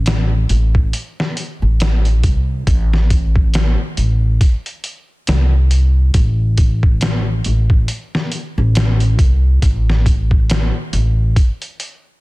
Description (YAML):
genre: trip hop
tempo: 69 BPM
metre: 4/4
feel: swing 58% on 16ths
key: A minor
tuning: A4 = 439 Hz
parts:
  - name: upright bass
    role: bass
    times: 0.0-11.3 s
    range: A1 to C2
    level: -14 LUFS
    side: equal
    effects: none
  - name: trip hop sampler-style drum kit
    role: drums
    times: 0.1-12.0 s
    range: hi-hat, kick drum, snare drum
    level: -16 LUFS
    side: equal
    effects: vintage 12-bit sampler grit
room: digital ambience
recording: dense, heavily limited modern master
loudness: -13 LUFS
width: side -21 dB against mid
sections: 0.0-12.2 A section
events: none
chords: none